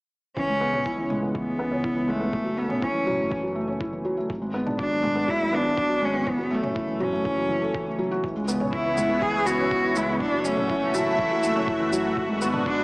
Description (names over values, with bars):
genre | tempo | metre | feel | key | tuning
piano and strings electronica | 122 BPM | 4/4 | straight | F# minor | A4 = 442 Hz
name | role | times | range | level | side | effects
warm cello | melody | 0.4-12.8 s | A3 to G#4 | -25 LUFS | equal | none
felt-muted upright piano | riff | 0.4-12.8 s | E3 to A4 | -26 LUFS | equal | low-pass filter
dark detuned saw bass | bass | 0.4-12.8 s | F#1 to C#2 | -36 LUFS | equal | tube saturation, sidechain pumping
electronic kick drum | drums | 0.4-12.8 s | none | -36 LUFS | equal | small room ambience
electronic toms and shaker | drums | 0.7-12.6 s | none | -37 LUFS | equal | small room ambience
lush unison pad | sustained chords | 8.5-12.8 s | G#3 to E5 | -28 LUFS | equal | chorus, phaser, sidechain pumping
room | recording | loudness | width
moderate scoring stage reverb, RT60 1.8 s, digital ambience | small speaker sound | -22 LUFS | side -26 dB against mid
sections
0.4-12.8 A section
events
none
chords
0.4 C#m7; 2.3 F#m7; 4.3 G#m7b5; 6.3 F#m7; 8.2 C#m7; 10.2 F#m7; 12.2 G#m7b5